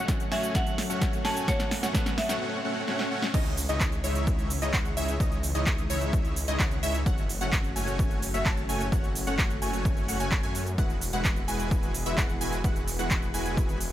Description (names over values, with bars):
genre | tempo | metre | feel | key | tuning
EDM, festival progressive house | 129 BPM | 4/4 | straight | C# minor | A4 = 440 Hz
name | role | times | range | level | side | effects
marimba with hard mallets | melody | 0.0-2.4 s | C#5 to A5 | -35 LUFS | equal | dub echo
clean electric guitar | accompaniment | 0.0-2.4 s | F#3 to F#4 | -38 LUFS | right 4 dB | wide subtle chorus, sidechain pumping, dub echo
lush unison pad | sustained chords | 0.0-13.9 s | F#2 to C#5 | -40 LUFS | left 2 dB | chorus, sidechain pumping
wide unison pluck | arpeggios | 0.0-13.8 s | C#5 to A5 | -37 LUFS | equal | sidechain pumping, dub echo
dense compressed supersaw | riff | 0.0-13.8 s | G#3 to G#5 | -33 LUFS | equal | cassette tape, sidechain pumping, low-pass filter, dub echo
riser | sound effects | 0.0-3.3 s | none | -39 LUFS | equal | none
big-room dance drum kit | drums | 0.1-13.9 s | cabasa, crash cymbal, handclaps, hi-hat, snare drum | -33 LUFS | right 1 dB | overdrive
electronic kick drum | drums | 0.1-13.7 s | none | -28 LUFS | equal | overdrive
detuned saw bass | bass | 3.3-13.9 s | E1 to F#2 | -32 LUFS | equal | sidechain pumping
room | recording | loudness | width
light reverb | none | -25 LUFS | side -12 dB against mid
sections
0.0-3.3 A section; 3.3-13.9 B section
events
build-up 0.0-3.3; drum fill 0.0-2.4, 2.9-3.3; riser 0.0-3.3; break 2.4-3.3; drop 3.3-13.9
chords
0.0 F#m; 3.3 C#madd9; 7.1 F#m; 10.8 Eadd9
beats
0.09 0.55 1.01 | 1.48 1.95 2.41 2.88 | 3.34 3.81 4.27 4.74 | 5.20 5.67 6.13 6.60 | 7.06 7.53 7.99 8.46 | 8.92 9.39 9.85 10.32 | 10.78 11.25 11.71 12.18 | 12.64 13.11 13.57